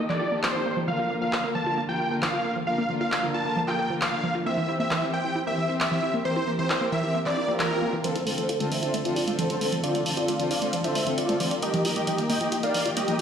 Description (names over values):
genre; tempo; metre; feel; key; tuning
uplifting trance; 134 BPM; 4/4; straight; F major; A4 = 439 Hz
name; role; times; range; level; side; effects
muted studio string section; sustained chords; 0.0-13.2 s; D3 to C5; -29 LUFS; left 1 dB; none
dense compressed supersaw; melody; 0.1-13.2 s; F4 to A5; -27 LUFS; equal; cassette tape, low-pass filter, dub echo
wide unison pluck; arpeggios; 0.1-13.2 s; E3 to F4; -31 LUFS; right 2 dB; dub echo
punchy analog drum machine; drums; 0.1-13.2 s; handclaps, hi-hat; -30 LUFS; equal; none
swell; sound effects; 7.3-8.0 s; none; -34 LUFS; left 1 dB; none
room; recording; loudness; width
light reverb; played on a big sound system in a bare room, stone room reverb; -23 LUFS; side -8 dB against mid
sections
0.0-8.0 A section; 8.0-13.2 B section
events
swell 7.3-8.0; build-up 8.0-13.2; filter sweep on supersaw synth 8.0-13.2; filter sweep on synth arpeggio sound 8.0-13.2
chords
0.0 Eb; 0.9 Bb; 4.5 C; 8.0 F6; 11.6 Eb